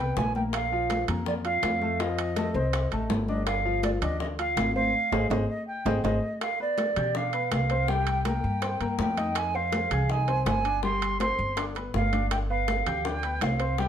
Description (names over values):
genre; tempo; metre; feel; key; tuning
latin, salsa; 163 BPM; 4/4; straight; unclear; A4 = 441 Hz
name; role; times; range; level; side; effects
mellow hollow concert flute; melody; 0.0-13.9 s; D5 to C6; -29 LUFS; right 3 dB; none
clear grand piano; accompaniment; 0.0-13.9 s; F3 to Ab6; -32 LUFS; left 3 dB; none
upright bass; bass; 0.0-13.9 s; G1 to B2; -30 LUFS; equal; none
bongos; percussion; 0.2-13.9 s; none; -37 LUFS; left 6 dB; none
congas; percussion; 0.2-13.9 s; none; -33 LUFS; left 1 dB; none
timbales; percussion; 0.2-13.8 s; none; -36 LUFS; right 8 dB; none
room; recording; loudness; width
moderate studio reverb, RT60 0.8 s; none; -24 LUFS; side -9 dB against mid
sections
0.0-6.4 A section; 6.4-13.9 B section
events
band accent 4.9-6.4; drum fill 5.9-6.4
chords
0.0 G; 0.5 Bb5; 2.0 F7; 3.5 G7sus4; 4.9 Abmaj7; 6.4 G7; 7.9 Cm7; 9.4 Fm7; 10.8 Gsus4; 11.6 G7